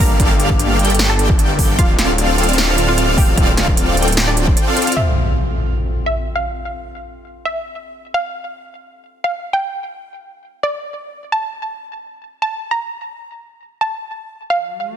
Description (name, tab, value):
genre	future bass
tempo	151 BPM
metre	4/4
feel	half-time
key	D minor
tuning	A4 = 440 Hz
part	wide unison pluck	melody	0.0-14.8 s	D4 to Bb5	-22 LUFS	right 1 dB	sidechain pumping, digital delay
part	airy dreamy lead	arpeggios	0.0-4.9 s	F5 to G5	-26 LUFS	left 1 dB	chorus, phaser, sidechain pumping, ping-pong delay
part	concert harp	arpeggios	0.0-7.8 s	C4 to F5	-28 LUFS	left 6 dB	sidechain pumping, ping-pong delay
part	supersaw chords	riff	0.0-4.9 s	Bb3 to G5	-19 LUFS	right 1 dB	analog chorus, sidechain pumping, low-pass filter, ping-pong delay
part	wide detuned saw bass	bass	0.0-4.6 s	D1 to G1	-18 LUFS	equal	chorus, sidechain pumping
part	big-room dance drum kit	drums	0.0-5.0 s	hi-hat, snare drum	-19 LUFS	right 1 dB	none
part	electronic kick drum	drums	0.0-4.5 s	none	-15 LUFS	equal	none
part	impact and riser	sound effects	5.0-6.6, 14.7-15.0 s	none	-20 LUFS	equal	none
room	light reverb, digital ambience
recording	dense, heavily limited modern master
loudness	-14 LUFS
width	side -9 dB against mid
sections	0.0-5.0 A section; 5.0-15.0 B section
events	drop 0.0-5.0; drum fill 4.8; impact 5.0-6.6; riser 14.7-15.0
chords	0.0 Gm9; 1.8 Dm7; 5.0 N.C.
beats	| 0.20 0.59 0.99 1.39 | 1.79 2.18 2.58 2.98 | 3.38 3.77 4.17 4.57 | 4.96 5.36 5.76 6.16 | 6.55 6.95 7.35 7.75 | 8.14 8.54 8.94 9.34 | 9.73 10.13 10.53 10.93 | 11.32 11.72 12.12 12.52 | 12.91 13.31 13.71 14.10 | 14.50 14.90